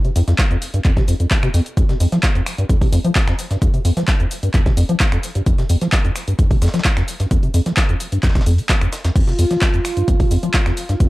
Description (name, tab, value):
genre	acid house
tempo	130 BPM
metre	4/4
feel	straight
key	unclear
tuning	A4 = 440 Hz
part	liquid acid bass	riff	0.0-11.1 s	F2 to F3	-18 LUFS	equal	tube saturation, lush chorus, sidechain pumping
part	breakbeat sampler-style drum kit	drums	0.0-11.1 s	hi-hat, snare drum	-34 LUFS	equal	none
part	punchy analog drum machine	drums	0.0-11.1 s	cabasa, crash cymbal, finger snaps, handclaps, hi-hat	-24 LUFS	equal	overdrive
part	electronic kick drum	drums	0.4-11.1 s	none	-16 LUFS	equal	overdrive
part	warm analog pad	sustained chords	9.2-11.1 s	F4	-23 LUFS	right 1 dB	chorus, sidechain pumping
room	digital ambience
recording	dark, warm production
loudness	-15 LUFS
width	side -19 dB against mid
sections	0.0-11.1 A section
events	filter sweep on acid bass 0.0-11.1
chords	0.0 F5